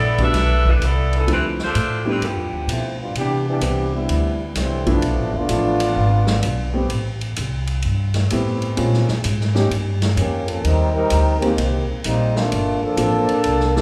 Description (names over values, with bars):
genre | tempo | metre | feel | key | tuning
jazz, big band swing | 128 BPM | 4/4 | swing 67% on 8ths | G major, C major from 3.2 s | A4 = 440 Hz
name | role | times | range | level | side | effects
warm saxophone section | melody | 0.0-3.0 s | E3 to E5 | -24 LUFS | equal | none
upright bass | bass | 0.0-13.8 s | F1 to C3 | -23 LUFS | equal | none
warm grand piano | accompaniment | 0.2-13.8 s | F3 to A4 | -26 LUFS | equal | none
swinging big-band drum kit | drums | 0.2-13.8 s | hi-hat, kick drum, ride cymbal, snare drum | -29 LUFS | equal | none
warm trombone section | second line | 2.7-6.8, 10.2-13.8 s | D3 to Bb4 | -23 LUFS | equal | none
room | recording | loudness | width
wet recital hall reverb, RT60 1.6 s | recorded in a church or concert hall | -20 LUFS | mono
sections
0.0-3.2 A section; 3.2-13.8 B section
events
trombone section solo 3.2-13.8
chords
0.0 G69 (rootless); 1.3 Dm7; 2.2 G7; 3.2 Cmaj9; 5.0 Bm7b5; 6.0 G#dim7; 6.9 Am9; 8.8 Bbm9; 9.7 Eb7; 10.6 Abmaj9 (rootless); 12.5 Gm11